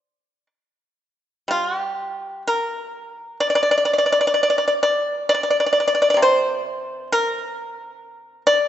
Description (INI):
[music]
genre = chinese traditional, Chinese solo plucked strings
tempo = 58-67 BPM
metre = 4/4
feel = rubato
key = unclear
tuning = A4 = 440 Hz
[part]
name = pipa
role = solo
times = 0.0-8.7 s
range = C3 to D5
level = -18 LUFS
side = equal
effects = none
[sound]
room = moderate concert hall reverb, RT60 2.2 s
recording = recorded in a church or concert hall, nothing above 7.9 kHz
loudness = -18 LUFS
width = side -11 dB against mid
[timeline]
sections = 0.0-1.5 A section; 1.5-8.7 B section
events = none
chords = none